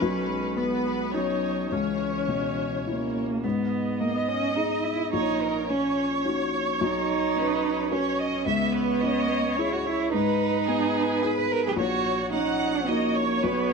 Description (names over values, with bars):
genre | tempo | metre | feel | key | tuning
neoclassical piano and strings | 108 BPM | 3/4 | rubato | G# minor | A4 = 441 Hz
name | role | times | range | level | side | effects
muted chamber violin section | melody | 0.0-13.7 s | G#4 to F#5 | -29 LUFS | left 1 dB | tape echo
muted cello | second line | 0.0-13.7 s | E3 to B4 | -28 LUFS | right 6 dB | none
felt-muted upright piano | accompaniment | 0.0-13.7 s | A#1 to B4 | -28 LUFS | left 5 dB | none
muted viola | accompaniment | 0.0-13.7 s | B3 to D#5 | -33 LUFS | right 3 dB | none
room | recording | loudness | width
light reverb | dark, warm production | -23 LUFS | side -4 dB against mid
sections
0.0-3.4 A section; 3.4-13.7 B section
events
none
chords
0.0 Bsus2; 1.7 C#m7; 3.4 G#m; 5.1 D#m7/A#; 6.8 Bsus2; 8.5 C#m7; 10.1 G#m; 11.8 D#m7/A#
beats
| 0.01 0.57 1.13 | 1.71 2.29 2.87 | 3.44 4.00 4.56 | 5.12 5.69 6.25 | 6.80 7.36 7.92 | 8.48 9.03 9.58 | 10.12 10.68 11.23 | 11.78 12.33 12.88 | 13.44